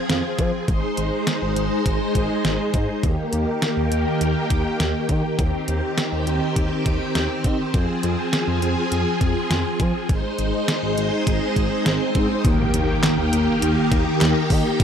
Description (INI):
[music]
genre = synth-pop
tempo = 102 BPM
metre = 4/4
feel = straight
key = unclear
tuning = A4 = 440 Hz
[part]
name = string machine, violins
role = sustained chords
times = 0.0-14.8 s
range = Eb3 to C5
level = -22 LUFS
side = equal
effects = ensemble chorus
[part]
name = smooth gliding synth bass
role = bass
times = 0.1-14.8 s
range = Ab1 to F3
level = -24 LUFS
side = equal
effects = none
[part]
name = detuned 8-bit digital drum machine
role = drums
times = 0.1-14.8 s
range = handclaps, hi-hat, kick drum, snare drum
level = -22 LUFS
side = equal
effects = overdrive
[part]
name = swell and impact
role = sound effects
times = 11.1-14.8 s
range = none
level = -28 LUFS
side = right 1 dB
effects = none
[sound]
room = little or no reverb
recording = dry, gritty hardware recording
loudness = -19 LUFS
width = side -8 dB against mid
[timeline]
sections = 0.0-12.4 A section; 12.4-14.8 B section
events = swell 11.1-12.4; impact 12.4-14.8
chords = 0.0 Fm; 0.7 Ab; 3.0 Eb; 5.4 Cm/Eb; 7.7 Fm; 10.1 Ab; 12.4 Eb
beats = 0.09 | 0.68 1.27 1.86 2.45 | 3.04 3.62 4.21 4.80 | 5.39 5.98 6.56 7.15 | 7.74 8.33 8.92 9.51 | 10.09 10.68 11.27 11.86 | 12.45 13.04 13.62 14.21 | 14.80